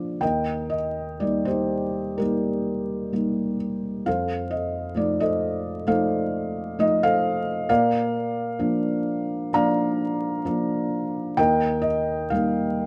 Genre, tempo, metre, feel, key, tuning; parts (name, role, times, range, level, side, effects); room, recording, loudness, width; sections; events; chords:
classical, lyrical solo piano; 59-68 BPM; 4/4; rubato; Eb major; A4 = 442 Hz
felt-muted upright piano; solo; 0.0-12.9 s; Eb2 to Bb5; -24 LUFS; equal
moderate plate reverb, RT60 3.1 s; vinyl crackle, nothing above 10.5 kHz; -24 LUFS; mono
0.2-12.9 A section
0.2 Eb; 4.1 F7; 7.7 Bb; 11.4 Eb